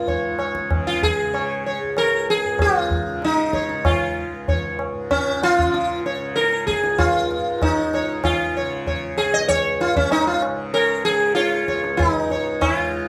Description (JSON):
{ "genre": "indian classical, Hindustani", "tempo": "96 BPM", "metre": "7/4", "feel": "straight", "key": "Db raga bhupali", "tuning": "A4 = 438 Hz", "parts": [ { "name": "sitar", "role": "melody", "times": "0.0-13.1 s", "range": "Db4 to Eb5", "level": "-22 LUFS", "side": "equal", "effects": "none" }, { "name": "tanpura", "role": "drone", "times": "0.0-13.1 s", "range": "Db2 to Db3", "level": "-32 LUFS", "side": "equal", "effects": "none" }, { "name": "tabla", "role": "percussion", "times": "0.1-12.8 s", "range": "none", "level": "-28 LUFS", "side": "equal", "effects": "none" } ], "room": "moderate large studio reverb, RT60 1.1 s", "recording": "band playing live in one room", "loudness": "-21 LUFS", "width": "mono", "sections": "0.0-12.6 A section", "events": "none", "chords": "none" }